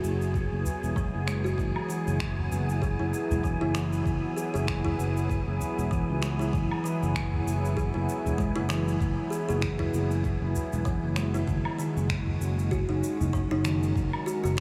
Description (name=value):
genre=organic downtempo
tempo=97 BPM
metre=4/4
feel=swing 57% on 16ths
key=unclear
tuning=A4 = 440 Hz
part: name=warm analog pad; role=sustained chords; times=0.0-14.6 s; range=F#3 to A#4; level=-37 LUFS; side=equal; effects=chorus, tremolo, sidechain pumping
part: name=kalimba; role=arpeggios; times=0.0-14.6 s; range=D#3 to G#4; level=-33 LUFS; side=equal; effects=low-pass filter, diffuse ambient delay
part: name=sustaining fretless electric bass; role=bass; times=0.0-14.6 s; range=E1 to C#2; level=-32 LUFS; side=equal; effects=ensemble chorus, sidechain pumping
part: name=electronic cabasa, finger snaps and woodblock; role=drums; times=0.0-14.6 s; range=none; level=-41 LUFS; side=equal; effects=none
part: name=wind-like tuned noise texture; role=texture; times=0.0-14.6 s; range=G#5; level=-44 LUFS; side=equal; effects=built-in reverb
part: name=electronic kick drum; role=drums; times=0.3-14.6 s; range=none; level=-34 LUFS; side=equal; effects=none
part: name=udu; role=percussion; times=0.6-13.3 s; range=none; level=-39 LUFS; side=equal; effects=none
room=moderate huge ambient reverb, RT60 7.7 s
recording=dreamy mix soaked in reverb, studio ambience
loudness=-28 LUFS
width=mono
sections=0.0-14.6 A section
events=none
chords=0.0 F#sus2; 1.6 E; 6.5 Eadd9; 11.5 D#m/F#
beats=0.35 0.96 | 1.58 2.20 2.82 3.44 | 4.06 4.68 5.29 5.91 | 6.53 7.15 7.77 8.39 | 9.01 9.62 10.24 10.86 | 11.48 12.10 12.72 13.34 | 13.95 14.57